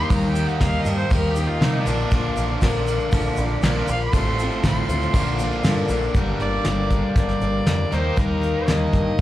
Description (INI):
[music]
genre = folk rock and heartland rock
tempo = 119 BPM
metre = 4/4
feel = straight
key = unclear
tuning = A4 = 440 Hz
[part]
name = rich fiddle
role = melody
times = 0.0-9.2 s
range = D4 to C6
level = -28 LUFS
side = right 1 dB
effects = slapback echo
[part]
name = bright upright piano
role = accompaniment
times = 0.0-6.0 s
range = C4 to C5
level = -36 LUFS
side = right 1 dB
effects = none
[part]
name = picked steel-string acoustic guitar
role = accompaniment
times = 0.0-9.2 s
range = G2 to Bb4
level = -28 LUFS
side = left 4 dB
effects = slapback echo
[part]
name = tonewheel organ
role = sustained chords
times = 0.0-6.1 s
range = Bb3 to Eb6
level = -34 LUFS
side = equal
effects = slow rotary speaker, chorus vibrato
[part]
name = crunchy overdriven guitar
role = riff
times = 0.0-9.2 s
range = G2 to G4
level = -26 LUFS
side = equal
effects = slapback echo
[part]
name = deep dub picked electric bass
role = bass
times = 0.0-9.2 s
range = G1 to C3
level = -24 LUFS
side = equal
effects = none
[part]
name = soft brush drum kit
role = drums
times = 0.1-9.2 s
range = crash cymbal, hi-hat, kick drum, ride cymbal, snare drum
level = -23 LUFS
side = equal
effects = none
[part]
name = tube shaker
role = percussion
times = 0.1-6.1 s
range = none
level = -44 LUFS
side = right 2 dB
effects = none
[sound]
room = small room ambience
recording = live gig heard through the venue's PA, club reverb, vinyl crackle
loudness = -18 LUFS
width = side -14 dB against mid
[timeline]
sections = 0.0-6.2 A section; 6.2-9.2 B section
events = fiddle solo 0.0-6.2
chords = 0.0 Eb; 1.9 Bb; 4.1 F/A; 5.1 Bb; 6.2 Gm; 7.9 Eb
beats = | 0.10 0.61 1.11 1.62 | 2.12 2.62 3.13 3.63 | 4.13 4.64 5.14 5.65 | 6.15 6.66 7.16 7.67 | 8.17 8.68 9.19